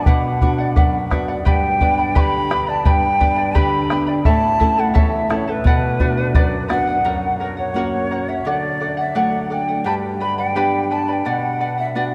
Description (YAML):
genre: andean folk, Andean ensemble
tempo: 86 BPM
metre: 2/4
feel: straight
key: B minor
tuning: A4 = 441 Hz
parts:
  - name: large quena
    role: melody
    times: 0.0-12.1 s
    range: A#4 to C#6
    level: -23 LUFS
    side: equal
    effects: none
  - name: charango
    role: accompaniment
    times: 0.0-12.1 s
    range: E4 to B5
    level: -26 LUFS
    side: equal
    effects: none
  - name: nylon-string guitar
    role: accompaniment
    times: 0.0-12.1 s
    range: E2 to G4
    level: -25 LUFS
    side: equal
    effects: none
  - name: bombo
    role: percussion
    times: 0.1-6.9 s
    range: none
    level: -21 LUFS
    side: equal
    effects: none
room: wet cathedral reverb, RT60 6.3 s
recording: in a vast, echoing space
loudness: -18 LUFS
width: mono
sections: 0.0-7.0 A section; 7.0-12.1 B section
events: none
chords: 0.0 Bm; 1.5 G; 4.3 A; 5.7 Bm; 7.0 F#; 8.4 D; 9.9 G; 11.3 Bm